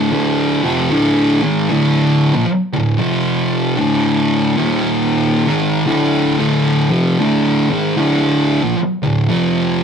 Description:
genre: metal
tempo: 76 BPM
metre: 4/4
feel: swing 66% on 8ths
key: D phrygian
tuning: A4 = 436 Hz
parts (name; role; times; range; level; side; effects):
- thick fuzz guitar; solo; 0.0-9.8 s; D2 to G#3; -13 LUFS; equal; distortion
room: wet studio reverb, RT60 0.6 s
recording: rough rehearsal-room recording, warm saturation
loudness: -13 LUFS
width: side -7 dB against mid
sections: 0.0-9.8 A section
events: none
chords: 0.0 Dm; 2.9 F5; 4.4 Eb5; 5.4 Dm; 9.2 F5

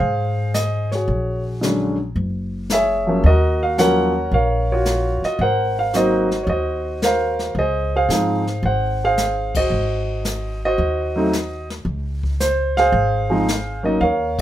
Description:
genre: jazz piano trio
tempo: 111 BPM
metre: 4/4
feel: swing 69% on 8ths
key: Db major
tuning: A4 = 443 Hz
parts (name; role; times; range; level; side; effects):
- warm grand piano; melody; 0.0-14.4 s; D3 to Gb5; -18 LUFS; right 1 dB; none
- upright bass; bass; 0.0-14.4 s; F#1 to Ab2; -23 LUFS; equal; none
- jazz brush drum kit; drums; 0.0-14.4 s; brushed snare drum, hi-hat, kick drum, ride cymbal, snare drum; -26 LUFS; left 2 dB; none
room: light reverb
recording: minimal, uncompressed stereo recording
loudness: -17 LUFS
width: side -12 dB against mid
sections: 0.0-14.4 A section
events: band accent 9.4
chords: 0.0 Dbmaj7 (rootless); 1.1 Bbm7b13; 3.2 Ebm9; 5.4 Ab9; 7.6 Dbmaj7; 9.7 Ab7; 11.9 Dbmaj7

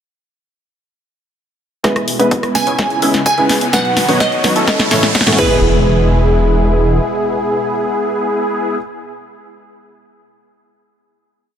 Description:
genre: EDM, festival progressive house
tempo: 127 BPM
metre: 4/4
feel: straight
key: E major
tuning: A4 = 440 Hz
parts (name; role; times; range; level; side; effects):
- felt-muted upright piano; accompaniment; 1.8-8.8 s; A2 to B4; -20 LUFS; equal; sidechain pumping
- lush unison pad; sustained chords; 1.8-8.8 s; B2 to F#4; -24 LUFS; left 1 dB; chorus, phaser, sidechain pumping
- wide unison lead; arpeggios; 1.8-8.8 s; F#4 to E5; -21 LUFS; equal; vintage 12-bit sampler grit, sidechain pumping, tape echo
- supersaw stab; riff; 1.8-8.8 s; B3 to E5; -20 LUFS; equal; phaser, sidechain pumping, low-pass filter, tape echo
- wide detuned saw bass; bass; 1.8-7.0 s; E1 to A2; -18 LUFS; equal; chorus, tube saturation, sidechain pumping, high-pass filter
- electronic kick drum; drums; 1.8-5.5 s; none; -21 LUFS; equal; high-pass filter on kick, small room ambience
- house drum kit; drums; 1.8-5.5 s; crash cymbal, hi-hat, rim click, snare drum; -18 LUFS; left 1 dB; small room ambience
- riser and impact; sound effects; 2.5-8.8 s; none; -22 LUFS; equal; none
- glassy wavetable pluck; melody; 2.6-8.8 s; B4 to G#5; -18 LUFS; right 3 dB; chorus, tape echo
room: light reverb, digital ambience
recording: none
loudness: -12 LUFS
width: side -8 dB against mid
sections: 1.8-5.6 build; 5.6-9.4 final hit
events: build-up 1.8-5.6; drum fill 1.8-5.6; filter sweep on supersaw synth 1.8-5.6; filter sweep on analog synth lead 1.8-5.6; riser 2.5-5.6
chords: 1.8 E; 2.8 C#m7; 3.7 B; 4.7 A; 5.4 E

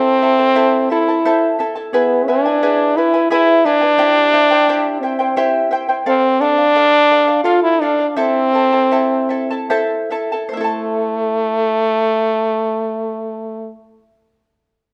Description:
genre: andean folk, Andean ensemble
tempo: 70-87 BPM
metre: 3/4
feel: straight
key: A minor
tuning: A4 = 442 Hz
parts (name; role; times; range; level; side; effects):
- French horn with straight mute; melody; 0.0-13.7 s; A3 to F4; -16 LUFS; equal; none
- charango; accompaniment; 0.0-14.1 s; E4 to A5; -21 LUFS; equal; none
room: moderate recital hall reverb, RT60 1.4 s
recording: close, detailed microphones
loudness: -15 LUFS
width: mono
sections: 0.0-10.5 A section; 10.5-14.9 B section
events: slowing down 6.1-10.5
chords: 0.0 Am; 1.9 E; 4.0 C; 6.1 Dm; 8.2 Am

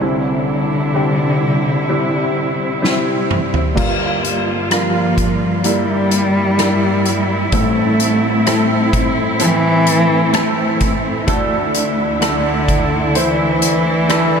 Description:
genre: pop ballad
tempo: 64 BPM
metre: 4/4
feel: straight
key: unclear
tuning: A4 = 440 Hz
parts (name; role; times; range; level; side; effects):
- dark cello; melody; 0.0-14.4 s; D3 to A3; -18 LUFS; left 1 dB; none
- clear baby grand piano; accompaniment; 0.0-14.4 s; G1 to C5; -19 LUFS; equal; analog chorus
- warm studio string section; sustained chords; 0.0-14.4 s; D2 to F4; -20 LUFS; right 1 dB; none
- loose indie drum kit; drums; 2.8-14.3 s; crash cymbal, hi-hat, kick drum, rim click, snare drum, toms; -20 LUFS; equal; none
room: wet huge ambient reverb, RT60 8.5 s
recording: dreamy mix soaked in reverb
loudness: -13 LUFS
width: side -6 dB against mid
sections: 0.0-3.8 A section; 3.8-14.4 B section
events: drum fill 2.8-3.8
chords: 0.0 Cadd9; 3.8 Gm7; 7.5 Am; 11.3 Dsus2

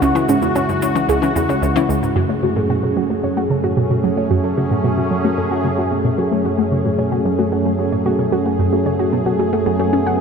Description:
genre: ambient, sequencer-driven space music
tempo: 112 BPM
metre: 4/4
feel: straight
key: F# minor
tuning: A4 = 440 Hz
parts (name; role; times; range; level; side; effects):
- sweeping resonant pad; sustained chords; 0.0-10.2 s; C#2 to G#4; -18 LUFS; equal; lush chorus
- warbly dusty pluck; arpeggios; 0.0-10.2 s; G#3 to F#5; -23 LUFS; moving between left 4 dB and right 5 dB; chorus, auto-pan, analog delay
- analog pluck; riff; 0.0-10.2 s; C#2 to C#4; -20 LUFS; equal; chorus, phaser, analog delay
- shaker and percussion blips; percussion; 0.0-2.1 s; none; -36 LUFS; right 2 dB; analog delay
room: wet huge ambient reverb, RT60 7.8 s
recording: none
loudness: -15 LUFS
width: side -6 dB against mid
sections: 0.0-2.2 A section; 2.2-10.2 B section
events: none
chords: 0.0 C#m; 2.2 F#madd9

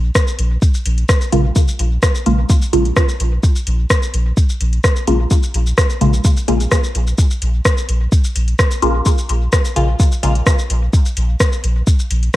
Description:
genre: dub techno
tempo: 128 BPM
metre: 4/4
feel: straight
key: Bb minor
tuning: A4 = 441 Hz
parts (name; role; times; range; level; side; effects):
- soft dub sub bass; bass; 0.0-12.3 s; Bb1; -16 LUFS; equal; sidechain pumping
- electronic kick drum; drums; 0.2-12.4 s; none; -14 LUFS; equal; none
- soft vintage rhythm box; drums; 0.2-12.4 s; hi-hat, rim click, shaker; -21 LUFS; equal; overdrive
- filtered dub chord stab; stabs; 1.3-10.4 s; Db3 to F4; -19 LUFS; equal; phaser, sidechain pumping, dub echo
room: little or no reverb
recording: vinyl crackle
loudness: -13 LUFS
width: side -16 dB against mid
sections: 0.0-12.4 A section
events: filter sweep on synth stab 0.0-12.4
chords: none

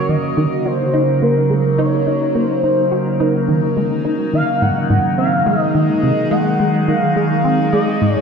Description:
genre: ambient, sequencer-driven space music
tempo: 106 BPM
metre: 4/4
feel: straight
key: unclear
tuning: A4 = 443 Hz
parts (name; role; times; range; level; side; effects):
- expressive portamento lead; melody; 0.0-8.2 s; Bb4 to Gb5; -19 LUFS; left 1 dB; analog chorus, ping-pong delay
- evolving wavetable pad; sustained chords; 0.0-8.2 s; Db3 to Bb4; -18 LUFS; right 1 dB; phaser, built-in reverb
- plucky analog bass; riff; 0.1-8.2 s; Ab2 to Gb4; -19 LUFS; equal; ensemble chorus, ping-pong delay
room: wet concert hall reverb, RT60 2.5 s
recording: dark, warm production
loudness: -14 LUFS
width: side -6 dB against mid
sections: 0.0-8.2 A section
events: filter sweep on analog synth bass 0.0-8.2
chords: 0.1 Ebm7; 4.6 Ab7

